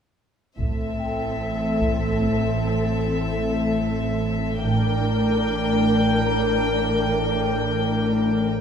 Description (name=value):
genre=cinematic, suspense film score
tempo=74 BPM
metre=5/4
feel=straight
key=A phrygian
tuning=A4 = 440 Hz
part: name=warm studio violin section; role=melody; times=0.6-8.5 s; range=E5 to G5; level=-28 LUFS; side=left 2 dB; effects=none
part: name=dark symphonic viola section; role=accompaniment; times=0.6-8.5 s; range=C4 to Bb4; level=-26 LUFS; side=equal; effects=none
part: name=dark studio cello section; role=bass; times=0.6-8.5 s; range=A2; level=-24 LUFS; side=equal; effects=none
part: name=dark symphonic double bass section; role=bass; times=0.6-5.4 s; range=A1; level=-28 LUFS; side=right 3 dB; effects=none
part: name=organ-like drone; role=drone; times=1.1-8.6 s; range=A1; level=-27 LUFS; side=right 1 dB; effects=ensemble chorus, built-in reverb
part: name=taiko ensemble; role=drums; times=0.6-2.2 s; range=none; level=-28 LUFS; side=right 1 dB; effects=none
part: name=celesta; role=texture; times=1.0-8.6 s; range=Bb4 to Bb5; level=-33 LUFS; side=left 4 dB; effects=none
room=wet scoring stage reverb, RT60 1.5 s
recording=minimal, uncompressed stereo recording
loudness=-20 LUFS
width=side -7 dB against mid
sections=0.6-8.6 A section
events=none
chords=0.6 Am; 4.6 Gm/A